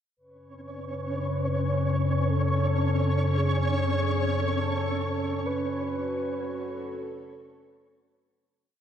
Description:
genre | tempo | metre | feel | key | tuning
dark ambient drone | 57 BPM | 4/4 | straight | F# minor | A4 = 441 Hz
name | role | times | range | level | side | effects
mellow horn-like synth lead | melody | 0.2-8.1 s | G#4 to B4 | -36 LUFS | left 1 dB | chorus, shimmer reverb, diffuse ambient delay
deep rumbling drone | drone | 0.8-8.7 s | F#2 to C#3 | -27 LUFS | equal | built-in reverb, lush chorus
flickering grainy texture | texture | 0.5-8.6 s | C#4 to C#5 | -30 LUFS | equal | built-in reverb, shimmer reverb
dark analog pad | sustained chords | 4.9-8.6 s | C#4 to A4 | -35 LUFS | right 3 dB | chorus
room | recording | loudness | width
wet huge ambient reverb, RT60 8.1 s | dreamy mix soaked in reverb | -25 LUFS | side -9 dB against mid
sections
0.2-8.6 A section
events
fade-in on soft synth lead 0.2-8.6; fade-out 4.4-8.6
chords
0.2 F#m; 4.4 Aadd9

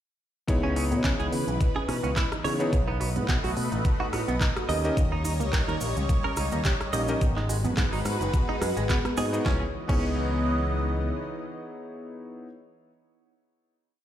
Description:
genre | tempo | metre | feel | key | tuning
nu-disco, nu disco | 107 BPM | 4/4 | swing 55% on 16ths | C# minor | A4 = 440 Hz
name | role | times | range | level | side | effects
warm electric grand piano | accompaniment | 0.5-12.5 s | B3 to D#5 | -31 LUFS | left 1 dB | ping-pong delay
lush unison pad | sustained chords | 0.9-12.5 s | E3 to D#5 | -32 LUFS | equal | chorus, phaser, sidechain pumping
wide unison pluck | arpeggios | 0.5-10.0 s | A#3 to B4 | -35 LUFS | right 2 dB | sidechain pumping, ping-pong delay
picked electric bass with an envelope filter | bass | 0.5-11.1 s | F#1 to C#3 | -29 LUFS | equal | sidechain pumping
electronic kick drum | drums | 0.5-10.0 s | none | -25 LUFS | equal | none
pop drum kit | drums | 0.5-10.1 s | crash cymbal, handclaps, hi-hat, rim click, snare drum | -34 LUFS | equal | none
direct-recorded clean electric guitar | riff | 0.6-10.0 s | G#2 to D#5 | -34 LUFS | right 4 dB | analog chorus, ping-pong delay
cabasa | percussion | 5.0-9.4 s | none | -42 LUFS | right 1 dB | none
room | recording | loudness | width
light reverb | played on a big sound system in a bare room, stone room reverb | -24 LUFS | side -11 dB against mid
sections
0.5-9.5 drop; 9.5-11.7 final chord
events
drop 0.5-9.5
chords
0.5 C#m9; 2.7 B7; 4.7 D#7; 7.2 G#m7; 9.5 C#m9

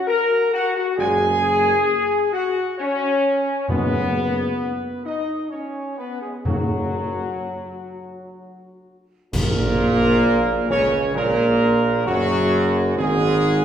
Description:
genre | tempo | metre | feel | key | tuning
classical, ceremonial fanfare | 66 BPM | 3/4 | straight | F# major | A4 = 440 Hz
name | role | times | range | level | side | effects
dark trumpet section | melody | 0.0-13.6 s | F#4 to A#5 | -25 LUFS | right 3 dB | none
mellow French horn section | sustained chords | 0.0-13.6 s | F#3 to A#4 | -22 LUFS | left 3 dB | none
mellow trombone section | sustained chords | 1.0-13.6 s | F#2 to A#3 | -25 LUFS | right 2 dB | none
mellow tuba | bass | 1.0-13.6 s | F#1 to C#2 | -22 LUFS | right 1 dB | none
timpani | percussion | 3.7-10.7 s | F#2 | -26 LUFS | left 1 dB | none
clash cymbals and concert bass drum | percussion | 9.3-11.1 s | none | -28 LUFS | equal | none
room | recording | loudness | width
wet recital hall reverb, RT60 1.5 s | recorded in a church or concert hall | -18 LUFS | side -9 dB against mid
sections
0.0-9.3 A section; 9.3-13.6 B section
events
band accent 9.3-10.2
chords
0.0 F#add9; 3.7 B69/F#; 6.5 F#; 9.3 F#add9/A#

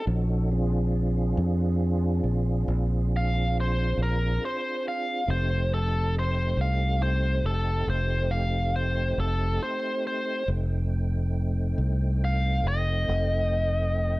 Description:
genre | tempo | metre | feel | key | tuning
slow blues | 46 BPM (dotted quarters) | 12/8 | straight | F mixolydian | A4 = 440 Hz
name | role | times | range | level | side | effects
biting lead guitar | melody | 0.0-14.2 s | A4 to F5 | -29 LUFS | equal | overdrive
tonewheel organ | sustained chords | 0.0-14.2 s | A3 to G5 | -33 LUFS | right 1 dB | chorus vibrato, slow rotary speaker
fingered electric bass | bass | 0.1-14.2 s | F1 to F2 | -25 LUFS | equal | none
room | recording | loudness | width
little or no reverb | dark, warm production | -24 LUFS | side -20 dB against mid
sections
0.0-14.2 A section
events
none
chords
0.1 Bb7; 5.3 F7

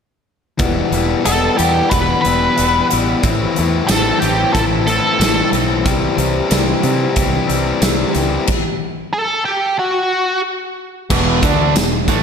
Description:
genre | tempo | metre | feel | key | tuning
classic rock | 91 BPM | 4/4 | straight | E minor | A4 = 440 Hz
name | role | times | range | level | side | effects
crunchy overdriven guitar | riff | 0.6-12.2 s | E2 to E4 | -18 LUFS | left 4 dB | none
overdriven fingered electric bass | bass | 0.6-12.2 s | E1 to C3 | -20 LUFS | right 1 dB | none
big rock drum kit | drums | 0.6-12.2 s | crash cymbal, hi-hat, kick drum, snare drum, tambourine | -19 LUFS | equal | none
octave-fuzz lead guitar | melody | 1.3-10.4 s | F#4 to B4 | -17 LUFS | equal | wah, distortion, slapback echo, analog delay
biting overdriven guitar | riff | 11.1-12.2 s | E2 to D4 | -18 LUFS | right 12 dB | none
room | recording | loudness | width
moderate lush hall reverb, RT60 1.8 s, small room ambience | big arena sound | -13 LUFS | side -6 dB against mid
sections
0.6-11.1 A section; 11.1-12.2 B section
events
stop 8.5-11.1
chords
0.6 Em; 3.2 Am; 5.9 C; 8.5 N.C.; 11.1 E5

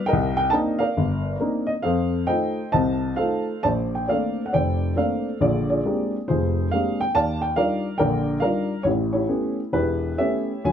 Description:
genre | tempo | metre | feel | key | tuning
solo jazz | 137 BPM | 4/4 | swing 67% on 8ths, uneven beats, rubato | Bb major | A4 = 438 Hz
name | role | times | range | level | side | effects
warm upright piano | solo | 0.0-10.7 s | E1 to A5 | -20 LUFS | equal | none
room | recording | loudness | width
light reverb | dark, warm production | -20 LUFS | side -8 dB against mid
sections
0.0-3.6 A section; 3.6-10.7 B section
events
none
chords
0.1 Cm9; 1.8 F7; 3.6 Bbmaj9; 5.4 Bb13; 7.1 Ebmaj9; 8.8 A9

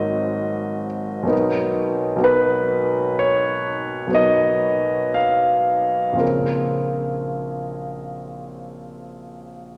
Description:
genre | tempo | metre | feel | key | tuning
classical, impressionist solo piano | 54-65 BPM | 5/4 | rubato | unclear | A4 = 440 Hz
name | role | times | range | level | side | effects
warm concert grand piano | solo | 0.0-9.8 s | Ab1 to F5 | -21 LUFS | equal | none
room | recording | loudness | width
wet concert hall reverb, RT60 2.0 s | none | -21 LUFS | mono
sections
0.0-9.8 A section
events
none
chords
0.0 Ab9; 1.3 Bmaj7; 6.2 Bbm9

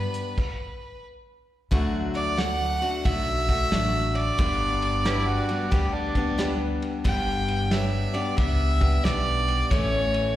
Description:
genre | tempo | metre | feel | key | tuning
honky-tonk and classic country | 90 BPM | 4/4 | swing 65% on 8ths | unclear | A4 = 440 Hz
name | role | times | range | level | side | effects
clear fiddle | melody | 0.0-10.4 s | B4 to G5 | -27 LUFS | right 1 dB | plate reverb, slapback echo
picked steel-string acoustic guitar | accompaniment | 0.0-10.4 s | G2 to A4 | -29 LUFS | left 3 dB | plate reverb, slapback echo
upright bass | bass | 0.0-10.4 s | G1 to D2 | -27 LUFS | equal | none
cloth-damped thuddy drum kit | drums | 0.1-10.2 s | crash cymbal, hi-hat, kick drum, ride cymbal, snare drum | -27 LUFS | equal | none
dark baby grand piano | accompaniment | 2.4-9.5 s | D4 to E5 | -36 LUFS | right 3 dB | plate reverb, slapback echo
overdriven harmonica | second line | 5.1-6.6 s | B3 to G4 | -31 LUFS | right 3 dB | plate reverb
room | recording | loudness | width
light reverb | live gig heard through the venue's PA, recital hall reverb | -22 LUFS | side -13 dB against mid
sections
0.0-1.7 A section; 1.7-10.4 B section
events
stop 0.4-1.7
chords
0.0 G; 1.7 D; 4.4 G; 9.7 A

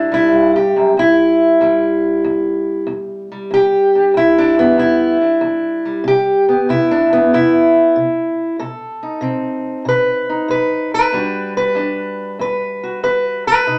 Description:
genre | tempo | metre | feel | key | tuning
acoustic country blues, solo or duo | 94 BPM | 4/4 | swing 68% on 8ths | E minor | A4 = 443 Hz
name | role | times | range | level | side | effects
fingerpicked steel-string acoustic guitar | solo | 0.0-13.8 s | E2 to B4 | -15 LUFS | equal | none
room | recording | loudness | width
wet club reverb, RT60 0.7 s | none | -15 LUFS | mono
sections
0.0-13.8 A section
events
none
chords
0.0 A5; 1.0 Em7; 6.1 Cmaj7; 8.6 B7b9; 11.1 Em9

